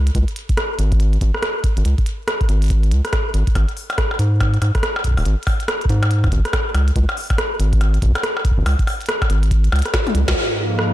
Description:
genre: IDM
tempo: 141 BPM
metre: 4/4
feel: swing 62% on 16ths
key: unclear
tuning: A4 = 441 Hz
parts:
  - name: round analog bass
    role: bass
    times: 0.0-10.3 s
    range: Eb1 to Ab2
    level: -16 LUFS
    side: equal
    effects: none
  - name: electronic kick drum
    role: drums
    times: 0.1-10.3 s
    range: none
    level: -19 LUFS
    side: equal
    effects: none
  - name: glitchy drum kit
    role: drums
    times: 0.1-10.9 s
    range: hi-hat, percussion blips, rim click, snare drum, toms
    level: -22 LUFS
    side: equal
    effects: soft clipping on snare, digital delay
  - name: icy glass pad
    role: sustained chords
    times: 10.4-10.9 s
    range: Ab2 to Eb4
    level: -21 LUFS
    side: equal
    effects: chorus, built-in reverb, vintage 12-bit sampler grit
room: little or no reverb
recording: blown-out, overdriven recording, overdrive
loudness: -16 LUFS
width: side -14 dB against mid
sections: 0.0-10.4 A section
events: drum fill 9.9-10.4; band accent 10.3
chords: 0.0 Db5; 3.6 Ab5; 6.7 Db5; 10.4 Absus2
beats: | 0.15 0.57 1.00 1.43 | 1.85 2.28 2.70 3.13 | 3.55 3.98 4.41 4.83 | 5.26 5.68 6.11 6.53 | 6.96 7.38 7.81 8.23 | 8.66 9.09 9.51 9.94 | 10.36 10.79

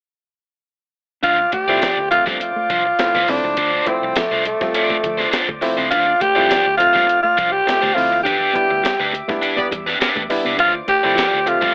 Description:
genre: funk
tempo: 103 BPM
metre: 4/4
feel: straight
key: D dorian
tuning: A4 = 441 Hz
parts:
  - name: growling tenor saxophone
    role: melody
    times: 1.2-11.7 s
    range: A3 to G4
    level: -19 LUFS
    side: equal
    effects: none
  - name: biting overdriven guitar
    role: accompaniment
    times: 1.2-11.7 s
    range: D4 to D5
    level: -24 LUFS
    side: equal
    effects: none
  - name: tonewheel organ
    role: sustained chords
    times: 1.2-11.7 s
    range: G4 to D6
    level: -33 LUFS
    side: equal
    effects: slow rotary speaker
  - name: mellow electric guitar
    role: riff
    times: 1.2-11.7 s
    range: F3 to D4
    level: -34 LUFS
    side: equal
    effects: none
  - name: vintage muted fingered electric bass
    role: bass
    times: 1.2-11.5 s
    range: C2 to E2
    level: -41 LUFS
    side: equal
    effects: none
  - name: breakbeat sampler-style drum kit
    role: drums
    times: 1.2-11.7 s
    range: hi-hat, kick drum, snare drum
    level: -28 LUFS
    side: equal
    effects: none
  - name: auto-wah clav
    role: stabs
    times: 1.7-11.7 s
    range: F3 to G4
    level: -28 LUFS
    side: equal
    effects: tape echo
  - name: bright horn section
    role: second line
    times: 9.6-9.7 s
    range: B3 to D5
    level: -24 LUFS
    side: equal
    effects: none
room: light reverb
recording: telephone sound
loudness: -17 LUFS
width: mono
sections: 1.2-11.7 A section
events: band accent 8.3-10.6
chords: 1.2 Dm7; 8.3 Em7; 10.6 Dm7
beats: | 1.24 1.82 2.41 2.99 | 3.58 4.16 4.75 5.33 | 5.92 6.50 7.08 7.67 | 8.26 8.84 9.43 10.01 | 10.60 11.18

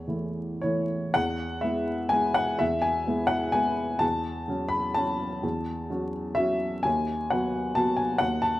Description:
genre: classical, piano waltz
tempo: 127 BPM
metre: 3/4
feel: uneven beats, rubato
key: E major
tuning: A4 = 441 Hz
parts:
  - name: dark upright piano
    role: solo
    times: 0.0-8.6 s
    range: D#2 to B5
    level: -24 LUFS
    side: left 1 dB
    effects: none
room: moderate recital hall reverb, RT60 1.4 s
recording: close, detailed microphones, vinyl crackle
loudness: -24 LUFS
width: side -15 dB against mid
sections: 0.0-1.2 A section; 1.2-8.6 B section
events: none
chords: 0.0 A; 1.2 E; 4.0 F#m7/E; 6.8 B/D#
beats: 0.08 0.64 | 1.15 1.63 2.12 | 2.60 3.07 3.55 | 4.02 4.48 4.96 | 5.43 5.89 6.37 | 6.84 7.31 7.77 | 8.21

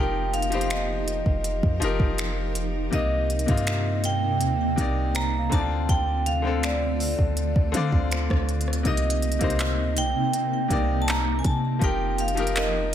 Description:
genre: contemporary R&B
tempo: 81 BPM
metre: 4/4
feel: straight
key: C dorian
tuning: A4 = 440 Hz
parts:
  - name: vibraphone with hard mallets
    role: melody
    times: 0.0-12.9 s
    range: D5 to Bb5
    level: -29 LUFS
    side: right 2 dB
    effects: none
  - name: bright grand piano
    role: accompaniment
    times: 0.0-12.9 s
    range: C3 to Eb5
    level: -30 LUFS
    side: left 6 dB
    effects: none
  - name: granular cloud pad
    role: sustained chords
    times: 0.0-12.9 s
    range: C3 to Bb4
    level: -31 LUFS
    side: right 1 dB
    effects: built-in reverb, sidechain pumping
  - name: warm 808-style bass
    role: bass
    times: 0.0-12.9 s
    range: F1 to D3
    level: -27 LUFS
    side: equal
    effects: none
  - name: worn celesta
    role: texture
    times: 0.0-0.3, 5.1-12.9 s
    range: Bb4 to G5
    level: -37 LUFS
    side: right 6 dB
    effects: none
  - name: smooth R&B drum kit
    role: drums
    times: 0.3-12.7 s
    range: finger snaps, handclaps, hi-hat, kick drum, rim click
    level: -27 LUFS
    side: equal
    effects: none
room: small room reverb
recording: none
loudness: -22 LUFS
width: side -10 dB against mid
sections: 0.0-12.9 A section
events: none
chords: 0.0 F9sus4; 2.9 Cm9; 5.5 Dm7; 8.9 Cm9; 11.8 F9sus4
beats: 0.70 1.45 2.19 | 2.93 3.67 4.41 5.15 | 5.89 6.63 7.37 8.11 | 8.85 9.59 10.34 11.07 | 11.82 12.56

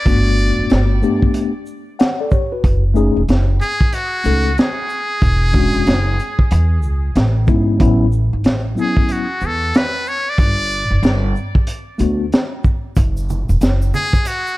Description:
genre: hip hop, jazz-hop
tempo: 93 BPM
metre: 4/4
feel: swing 62% on 16ths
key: A major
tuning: A4 = 439 Hz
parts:
  - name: trumpet with metal mute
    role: melody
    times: 0.0-14.6 s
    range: F#4 to D5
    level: -21 LUFS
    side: equal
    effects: tape echo
  - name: mellow tine electric piano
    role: accompaniment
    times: 0.1-12.2 s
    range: F#3 to F#5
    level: -19 LUFS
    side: left 3 dB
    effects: fast stereo tremolo
  - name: upright bass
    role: bass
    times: 0.1-13.9 s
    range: E1 to E2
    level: -16 LUFS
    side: equal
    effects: none
  - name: crunchy breakbeat drum kit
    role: drums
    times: 0.1-14.4 s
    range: hi-hat, kick drum, shaker, snare drum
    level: -16 LUFS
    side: equal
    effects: none
  - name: tube shaker and congas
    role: percussion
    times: 13.0-14.6 s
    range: none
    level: -29 LUFS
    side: right 4 dB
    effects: none
room: small room ambience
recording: none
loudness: -14 LUFS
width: side -18 dB against mid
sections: 0.0-7.8 A section; 7.8-14.6 A section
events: none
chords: 0.1 Gmaj9; 2.6 Emaj13 (rootless); 5.2 E13; 7.2 Amaj9; 7.8 A6; 10.4 Gmaj9; 13.0 Eadd9 (rootless)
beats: | 0.06 0.71 1.35 2.00 | 2.64 3.29 3.93 4.58 | 5.22 5.87 6.51 7.16 | 7.80 8.45 9.09 9.74 | 10.38 11.03 11.67 12.32 | 12.96 13.61 14.25

